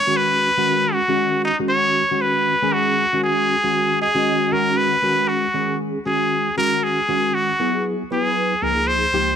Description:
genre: jazz.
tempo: 118 BPM.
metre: 4/4.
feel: straight.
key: G# minor.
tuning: A4 = 440 Hz.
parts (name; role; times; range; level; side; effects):
trumpet with straight mute; melody; 0.0-9.4 s; D#4 to C#5; -18 LUFS; equal; plate reverb.
mellow tine electric piano; accompaniment; 0.1-9.4 s; C#2 to D#5; -22 LUFS; equal; medium stereo tremolo, ensemble chorus, plate reverb.
room: moderate studio ambience, RT60 0.5 s.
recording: none.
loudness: -17 LUFS.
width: side -8 dB against mid.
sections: 0.0-4.5 A section; 4.5-9.4 B section.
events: tine electric piano fill 3.8-4.5.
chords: 0.0 G#m7; 7.6 F#9sus4; 8.6 C#maj9.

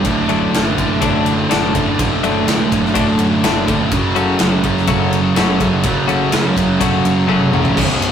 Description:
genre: quiet-loud alternative rock.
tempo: 124 BPM.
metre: 4/4.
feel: straight.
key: unclear.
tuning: A4 = 440 Hz.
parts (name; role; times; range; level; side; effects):
thick fuzz guitar; riff; 0.0-7.8 s; D2 to F#3; -16 LUFS; right 4 dB; distortion.
tight distorted guitar; riff; 0.0-8.1 s; B1 to F#3; -22 LUFS; left 8 dB; distortion.
fuzz picked electric bass; bass; 0.0-8.1 s; B0 to F#2; -24 LUFS; left 1 dB; overdrive.
big rock drum kit; drums; 0.0-8.1 s; crash cymbal, kick drum, ride cymbal, snare drum, toms; -20 LUFS; equal; none.
twelve-string electric guitar; arpeggios; 0.3-7.6 s; D3 to F#4; -21 LUFS; left 7 dB; digital delay.
distorted electric guitar; riff; 7.8-8.1 s; B1 to B2; -20 LUFS; left 2 dB; distortion.
room: moderate studio reverb, RT60 0.5 s.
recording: rough rehearsal-room recording, warm saturation.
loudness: -13 LUFS.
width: side -8 dB against mid.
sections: 0.0-7.8 A section.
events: drum fill 7.3-7.8.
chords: 0.1 D/F#; 3.9 F#m.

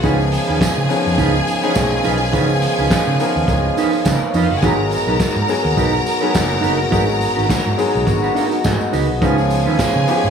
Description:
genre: disco.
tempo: 105 BPM.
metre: 4/4.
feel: swing 56% on 16ths.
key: unclear.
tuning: A4 = 438 Hz.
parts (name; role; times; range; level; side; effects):
clear studio string section; second line; 0.0-10.3 s; A#3 to A#5; -22 LUFS; equal; none.
clear grand piano; accompaniment; 0.0-10.3 s; E3 to F#5; -21 LUFS; left 6 dB; none.
mellow electric guitar; accompaniment; 0.0-10.3 s; D#4 to B4; -23 LUFS; right 11 dB; spring reverb.
dark French horn section; sustained chords; 0.0-10.3 s; D#3 to F#4; -23 LUFS; right 4 dB; none.
fingered electric bass; bass; 0.0-10.3 s; F#1 to C#3; -20 LUFS; right 1 dB; none.
vintage drum kit; drums; 0.0-10.2 s; handclaps, hi-hat, kick drum, snare drum; -22 LUFS; equal; none.
tambourine; percussion; 0.0-10.2 s; none; -35 LUFS; right 11 dB; none.
room: small room ambience.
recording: studio reverb.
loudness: -14 LUFS.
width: side -7 dB against mid.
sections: 0.0-10.3 A section.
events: grand piano fill 8.1-9.2.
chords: 0.0 C#9; 4.6 G#m7; 9.2 C#9.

